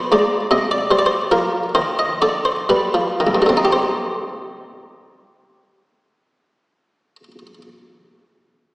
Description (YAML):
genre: classical, baroque-style suite movement for harpsichord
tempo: 56-78 BPM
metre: 3/4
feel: rubato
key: C minor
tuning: A4 = 440 Hz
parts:
  - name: buff-stop harpsichord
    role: solo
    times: 0.0-7.6 s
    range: C2 to Eb5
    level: -15 LUFS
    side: equal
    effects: none
room: wet concert hall reverb, RT60 2.4 s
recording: heard from further back in the room, small speaker sound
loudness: -15 LUFS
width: side -23 dB against mid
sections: 0.0-3.7 A section; 3.7-8.7 B section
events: slowing down 0.0-3.7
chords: 0.1 Ab; 0.9 G5; 3.7 Cm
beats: 0.11 | 0.91 1.76 2.68 | 3.72 4.78 5.83 | 6.88